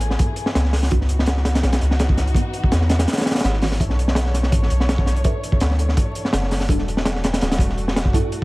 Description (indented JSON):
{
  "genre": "drum and bass, jungle",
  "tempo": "166 BPM",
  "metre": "4/4",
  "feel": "swing 53% on 16ths",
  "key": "unclear",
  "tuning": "A4 = 440 Hz",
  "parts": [
    { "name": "dark studio string section", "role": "sustained chords", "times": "0.0-8.4 s", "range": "E3 to C#5", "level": "-30 LUFS", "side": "left 1 dB", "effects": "none" },
    { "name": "filtered dub chord stab", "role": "stabs", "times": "0.0-8.4 s", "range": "E3 to E5", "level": "-29 LUFS", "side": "right 2 dB", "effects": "phaser, lush chorus, dub echo" },
    { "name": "soft dub sub bass", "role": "bass", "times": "0.0-8.1 s", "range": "D1 to E2", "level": "-20 LUFS", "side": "equal", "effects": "none" },
    { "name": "crunchy breakbeat drum kit", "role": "drums", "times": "0.0-8.4 s", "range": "hi-hat, kick drum, snare drum", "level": "-20 LUFS", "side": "equal", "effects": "none" }
  ],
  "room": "small room ambience",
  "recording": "vinyl crackle",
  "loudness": "-17 LUFS",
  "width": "side -21 dB against mid",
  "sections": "0.0-8.4 A section",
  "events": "filter sweep on synth stab 0.0-8.4",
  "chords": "0.0 F#m11; 0.9 C#m11; 3.8 Bm11; 6.7 Em11"
}